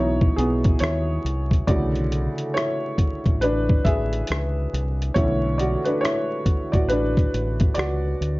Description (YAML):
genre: lo-fi hip hop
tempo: 69 BPM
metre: 4/4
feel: swing 63% on 16ths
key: unclear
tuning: A4 = 442 Hz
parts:
  - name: felt-muted upright piano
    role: accompaniment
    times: 0.0-8.4 s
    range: C#3 to E5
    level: -23 LUFS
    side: equal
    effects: cassette tape, low-pass filter
  - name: deep dub fingered electric bass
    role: bass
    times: 0.0-8.4 s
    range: A1 to D#2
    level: -25 LUFS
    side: equal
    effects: none
  - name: dusty soul sampler-style drum kit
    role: drums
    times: 0.2-8.4 s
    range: hi-hat, kick drum, rim click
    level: -21 LUFS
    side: equal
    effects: none
room: moderate small room reverb, RT60 0.5 s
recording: dark, warm production, vinyl crackle, nothing above 7.5 kHz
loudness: -20 LUFS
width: side -21 dB against mid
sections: 0.0-8.4 A section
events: felt piano solo 0.0-8.4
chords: 0.0 C#m11; 1.7 Bm11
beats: 0.81 | 1.68 2.55 3.42 4.29 | 5.16 6.03 6.90 7.77